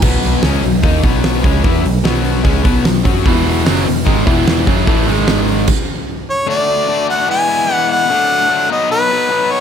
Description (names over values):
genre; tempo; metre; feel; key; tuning
classic rock; 149 BPM; 4/4; straight; B mixolydian; A4 = 439 Hz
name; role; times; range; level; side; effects
clear harmonica; melody; 0.0, 6.3-9.6 s; B4 to G#5; -14 LUFS; equal; none
distorted electric guitar; riff; 0.0-9.6 s; E2 to F#4; -18 LUFS; left 12 dB; overdrive
overdriven electric guitar; riff; 0.0-5.7 s; E2 to F#4; -19 LUFS; right 1 dB; none
picked electric bass; bass; 0.0-5.6 s; E1 to F#2; -18 LUFS; right 1 dB; none
huge arena drum kit; drums; 0.0-5.8 s; crash cymbal, hi-hat, kick drum, snare drum; -15 LUFS; right 1 dB; none
biting overdriven guitar; riff; 3.3-5.7 s; E2 to A3; -19 LUFS; right 12 dB; none
room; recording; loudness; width
light reverb, small room ambience; none; -11 LUFS; side -8 dB against mid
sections
0.0-6.5 A section; 6.5-9.6 B section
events
stop 5.7-6.5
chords
0.0 B; 3.3 E5; 5.1 G#5; 5.7 N.C.; 6.5 D; 7.3 E; 8.1 D; 8.7 B